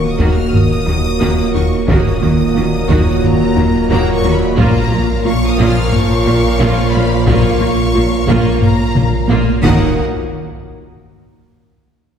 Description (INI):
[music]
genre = cinematic, hybrid orchestral and electronic film score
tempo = 89 BPM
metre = 4/4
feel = straight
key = Eb minor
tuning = A4 = 440 Hz
[part]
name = warm symphonic violin section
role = melody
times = 0.0-10.0 s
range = Bb5 to F6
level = -24 LUFS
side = left 3 dB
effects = none
[part]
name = rich symphonic violin section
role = second line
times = 0.0-10.0 s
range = Bb4 to Gb5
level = -26 LUFS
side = left 2 dB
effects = none
[part]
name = dark French horn section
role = sustained chords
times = 0.0-9.9 s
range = Bb3 to Db5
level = -25 LUFS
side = left 3 dB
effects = none
[part]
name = hollow soft pad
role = sustained chords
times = 0.0-10.0 s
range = Bb3 to Db5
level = -22 LUFS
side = right 4 dB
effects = none
[part]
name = warm trombone section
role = sustained chords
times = 0.0-9.9 s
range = Bb2 to Gb3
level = -22 LUFS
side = right 1 dB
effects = none
[part]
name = woody wave-folded pluck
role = arpeggios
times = 0.0-9.5 s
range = Eb3 to Bb4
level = -27 LUFS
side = right 4 dB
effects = none
[part]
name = round analog bass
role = riff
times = 0.0-9.5 s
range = Eb2 to Bb3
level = -19 LUFS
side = left 2 dB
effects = none
[part]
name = sub bass with octave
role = bass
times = 0.0-10.0 s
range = Eb1 to Bb1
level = -22 LUFS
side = equal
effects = none
[part]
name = clear symphonic viola section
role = accompaniment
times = 0.2-10.0 s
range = Bb3 to Gb4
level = -22 LUFS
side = right 2 dB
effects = none
[part]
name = rich symphonic cello section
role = bass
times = 0.2-10.0 s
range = Bb2 to Eb3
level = -21 LUFS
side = right 2 dB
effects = none
[part]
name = rich symphonic double bass section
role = bass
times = 0.2-10.0 s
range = Bb1 to Eb2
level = -22 LUFS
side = right 1 dB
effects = none
[part]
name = taiko ensemble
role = drums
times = 0.2-10.9 s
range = none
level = -18 LUFS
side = equal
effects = none
[sound]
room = wet concert hall reverb, RT60 2.0 s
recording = heard from further back in the room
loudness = -11 LUFS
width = side -8 dB against mid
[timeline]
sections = 0.0-10.0 A section; 10.0-12.2 B section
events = drum fill 9.0-10.0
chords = 0.0 Ebm; 4.6 Bbm; 9.6 Ebm; 10.0 N.C.